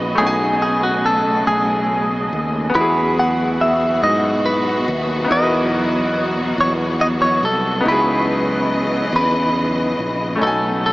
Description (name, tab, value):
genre	slow six-eight R&B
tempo	47 BPM (dotted quarters)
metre	6/8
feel	straight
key	E major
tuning	A4 = 441 Hz
part	clean electric guitar	melody	0.0-10.9 s	F#4 to F#5	-18 LUFS	equal	none
part	bright grand piano	accompaniment	0.0-10.9 s	G#3 to G#5	-23 LUFS	left 1 dB	none
part	warm studio string section	sustained chords	0.0-10.9 s	B2 to D#5	-23 LUFS	equal	none
part	fretless electric bass	bass	0.0-10.9 s	A#1 to G#2	-22 LUFS	equal	none
room	wet huge ambient reverb, RT60 8.1 s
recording	dreamy mix soaked in reverb, small speaker sound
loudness	-15 LUFS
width	side -19 dB against mid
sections	0.0-10.9 A section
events	none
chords	0.2 B13; 2.7 Emaj9; 7.8 C#m11; 10.4 B13